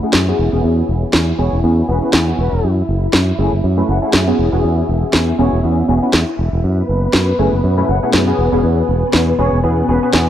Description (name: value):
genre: filtered disco house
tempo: 120 BPM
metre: 4/4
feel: swing 56% on 16ths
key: unclear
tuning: A4 = 439 Hz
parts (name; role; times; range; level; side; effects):
- jazz flute; melody; 0.0-10.1 s; B4 to F#5; -25 LUFS; left 1 dB; low-pass filter, tape echo
- funky polysynth comp; accompaniment; 0.0-10.3 s; A3 to C#5; -18 LUFS; equal; chorus, phaser, low-pass filter
- string machine, full ensemble; sustained chords; 0.0-10.3 s; B3 to E5; -21 LUFS; left 1 dB; ensemble chorus, low-pass filter
- modern bright fingered electric bass; bass; 0.0-10.3 s; E1 to F#2; -16 LUFS; equal; transformer saturation, low-pass filter
- electronic snare drum; drums; 0.1-10.2 s; none; -16 LUFS; equal; overdrive
room: little or no reverb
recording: dry, gritty hardware recording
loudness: -13 LUFS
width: side -11 dB against mid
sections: 0.0-10.3 A section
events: filter sweep 0.0-10.3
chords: 0.4 E69; 2.6 F#m7; 4.4 E69; 6.6 F#m7; 8.4 E69